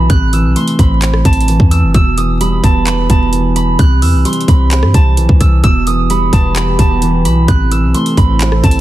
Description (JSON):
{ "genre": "hip hop, trap", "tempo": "130 BPM", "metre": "4/4", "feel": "half-time", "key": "E harmonic minor", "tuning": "A4 = 441 Hz", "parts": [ { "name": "concert harp", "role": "melody", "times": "0.0-8.8 s", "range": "A5 to F#6", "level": "-18 LUFS", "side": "right 3 dB", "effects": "ping-pong delay" }, { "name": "dark grand piano", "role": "accompaniment", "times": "0.0-8.8 s", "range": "B2 to C5", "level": "-16 LUFS", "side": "right 1 dB", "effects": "none" }, { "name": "clean 808-style bass", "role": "bass", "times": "0.0-8.8 s", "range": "E1 to G2", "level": "-13 LUFS", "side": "equal", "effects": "none" }, { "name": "trap drum kit", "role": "drums", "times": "0.1-8.8 s", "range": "handclaps, hi-hat, kick drum, rim click", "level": "-12 LUFS", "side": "equal", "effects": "none" }, { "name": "dark analog pad", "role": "sustained chords", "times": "6.2-8.8 s", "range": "E3 to A4", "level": "-22 LUFS", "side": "right 2 dB", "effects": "chorus" } ], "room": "digital ambience", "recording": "dense, heavily limited modern master, vinyl crackle", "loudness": "-9 LUFS", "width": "side -14 dB against mid", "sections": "0.0-8.8 A section", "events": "none", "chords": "0.1 Am; 1.9 Em; 3.8 C; 5.6 Em; 7.5 Am", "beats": "| 0.10 0.56 1.02 1.48 | 1.94 2.41 2.87 3.33 | 3.79 4.25 4.71 5.17 | 5.64 6.10 6.56 7.02 | 7.48 7.94 8.41" }